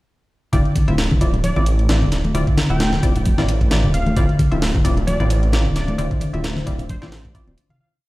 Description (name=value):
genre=breakbeat, breaks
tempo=132 BPM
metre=4/4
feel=swing 55% on 16ths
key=D minor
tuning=A4 = 437 Hz
part: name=picked electric bass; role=riff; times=0.5-7.8 s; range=C3 to C4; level=-23 LUFS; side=equal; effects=tape echo
part: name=filtered dub chord stab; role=stabs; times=0.5-7.5 s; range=C4 to E5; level=-27 LUFS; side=left 2 dB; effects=wide subtle chorus, tape echo
part: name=detuned saw bass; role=bass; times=0.5-7.6 s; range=D1 to A1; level=-20 LUFS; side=equal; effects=none
part: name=breakbeat sampler-style drum kit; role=drums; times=0.5-7.7 s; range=hi-hat, kick drum, snare drum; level=-20 LUFS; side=equal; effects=none
part: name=electronic hi-hat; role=drums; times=0.5-7.8 s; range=none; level=-38 LUFS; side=equal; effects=none
part: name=congas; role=percussion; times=0.8-7.8 s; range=none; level=-27 LUFS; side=left 1 dB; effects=none
part: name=plucky unison lead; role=melody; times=1.4-7.9 s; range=C5 to G5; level=-30 LUFS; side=equal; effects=telephone sound, vintage 12-bit sampler grit, tape echo
part: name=deep dark ambient pad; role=sustained chords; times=5.3-7.8 s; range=D4 to F5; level=-35 LUFS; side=left 1 dB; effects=chorus, built-in reverb, vintage 12-bit sampler grit, sidechain pumping
room=light reverb, digital ambience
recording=played on a big sound system in a bare room, stone room reverb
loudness=-16 LUFS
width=side -19 dB against mid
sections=0.5-7.8 groove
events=fade-out 5.4-7.8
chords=0.5 Dm9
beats=| 0.53 0.99 1.44 1.90 | 2.35 2.80 3.26 3.71 | 4.17 4.62 5.08 5.53 | 5.99 6.44 6.89 7.35